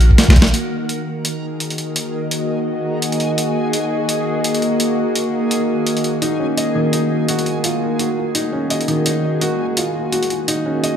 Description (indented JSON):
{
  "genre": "half-time drum and bass",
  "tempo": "169 BPM",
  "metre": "4/4",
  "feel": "swing 57% on 16ths, half-time",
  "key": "Eb minor",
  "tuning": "A4 = 440 Hz",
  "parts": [
    { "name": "bowed-like drone", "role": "sustained chords", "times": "0.0-11.0 s", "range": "Eb3 to Gb5", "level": "-20 LUFS", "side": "equal", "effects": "built-in reverb, sidechain pumping" },
    { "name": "long sustained 808-style bass", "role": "bass", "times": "0.0-0.5 s", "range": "Bb1", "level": "-11 LUFS", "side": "equal", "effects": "none" },
    { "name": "boom bap sampler-style drum kit", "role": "drums", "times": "0.0-10.9 s", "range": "hi-hat, shaker, snare drum", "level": "-20 LUFS", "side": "equal", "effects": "studio reverb" },
    { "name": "backwards swelling texture", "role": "texture", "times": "0.0-11.0 s", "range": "Ab4 to Bb4", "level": "-28 LUFS", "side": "left 1 dB", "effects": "built-in reverb" },
    { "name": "felt-muted upright piano", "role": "arpeggios", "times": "6.2-11.0 s", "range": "Eb3 to Eb5", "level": "-20 LUFS", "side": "right 1 dB", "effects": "tape echo" }
  ],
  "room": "moderate echo chamber reverb, RT60 1.6 s, digital ambience",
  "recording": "none",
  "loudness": "-16 LUFS",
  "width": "side -8 dB against mid",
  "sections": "0.5-11.0 A section",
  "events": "drum fill 0.2-0.5",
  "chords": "0.0 Ebm"
}